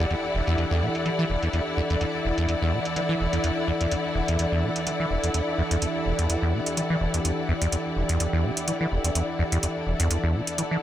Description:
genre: acid house.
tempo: 126 BPM.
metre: 4/4.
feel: swing 55% on 16ths.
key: E minor.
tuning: A4 = 440 Hz.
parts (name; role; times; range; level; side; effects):
lush unison pad; sustained chords; 0.0-10.8 s; E3 to A4; -31 LUFS; equal; chorus.
acid bass, saw; riff; 0.0-10.8 s; E1 to E3; -26 LUFS; equal; wide subtle chorus, ping-pong delay.
electronic hi-hat; drums; 0.0-10.7 s; none; -31 LUFS; right 1 dB; low-pass filter on hats, low-pass filter on perc, low-pass filter on snare, low-pass filter on room.
warm symphonic string section; texture; 0.0-10.8 s; E4 to F#5; -28 LUFS; left 1 dB; none.
room: moderate spring reverb, RT60 1.4 s.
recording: none.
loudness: -23 LUFS.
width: side -12 dB against mid.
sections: 0.0-10.8 A section.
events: filter sweep on analog synth pad 0.0-10.8.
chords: 0.0 Em7.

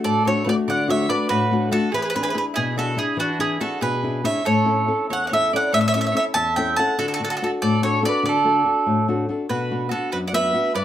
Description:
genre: italian folk, Italian serenade.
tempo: 96 BPM (dotted quarters).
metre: 6/8.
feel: straight.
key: D major.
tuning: A4 = 437 Hz.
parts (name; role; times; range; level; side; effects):
bowl-back mandolin; melody; 0.0-10.8 s; F#4 to A5; -23 LUFS; right 1 dB; none.
mandolin; second line; 0.0-10.8 s; D4 to F#5; -25 LUFS; right 5 dB; none.
flamenco guitar; accompaniment; 0.0-10.8 s; E2 to A4; -22 LUFS; left 3 dB; none.
room: wet studio ambience, RT60 0.5 s.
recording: none.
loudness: -18 LUFS.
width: side -11 dB against mid.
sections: 0.0-9.5 A section; 9.5-10.8 B section.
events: none.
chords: 0.0 D; 1.9 E7; 4.4 A; 7.0 D; 9.5 Bm.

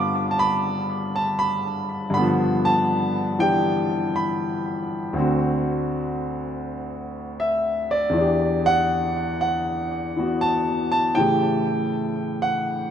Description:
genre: solo jazz.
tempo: 80 BPM.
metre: 4/4.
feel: swing 69% on 8ths.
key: unclear.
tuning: A4 = 441 Hz.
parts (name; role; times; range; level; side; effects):
clear grand piano; solo; 0.0-12.9 s; D2 to D6; -20 LUFS; equal; analog delay.
room: moderate plate reverb, RT60 3.2 s.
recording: dreamy mix soaked in reverb.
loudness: -20 LUFS.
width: side -8 dB against mid.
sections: 0.0-12.9 A section.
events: none.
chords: 0.0 G7; 5.1 D7; 8.2 Em7; 11.2 A7.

